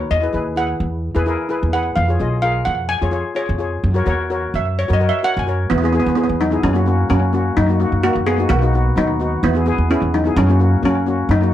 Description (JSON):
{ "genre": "calypso", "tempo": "129 BPM", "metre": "4/4", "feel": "straight", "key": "unclear", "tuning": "A4 = 440 Hz", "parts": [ { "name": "steel pan", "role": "melody", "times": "0.0-11.5 s", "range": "F#3 to G#5", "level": "-19 LUFS", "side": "right 1 dB", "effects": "slapback echo" }, { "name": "steel pan", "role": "accompaniment", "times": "0.0-11.5 s", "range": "A#3 to D#5", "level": "-21 LUFS", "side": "left 3 dB", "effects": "none" }, { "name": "upright bass", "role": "bass", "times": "0.0-11.5 s", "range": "B1 to F#2", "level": "-18 LUFS", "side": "equal", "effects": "none" } ], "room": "light reverb", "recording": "dry, close 1970s-style studio recording", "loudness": "-15 LUFS", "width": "side -12 dB against mid", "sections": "0.0-5.7 A section; 5.7-11.5 B section", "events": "steel pan solo 0.0-5.7", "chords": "0.1 Emaj7; 2.0 C#7; 3.8 F#7; 5.7 Eadd9; 6.6 F#; 7.6 D#m/F#; 8.5 Bmaj7; 9.4 Eadd9; 10.4 F#" }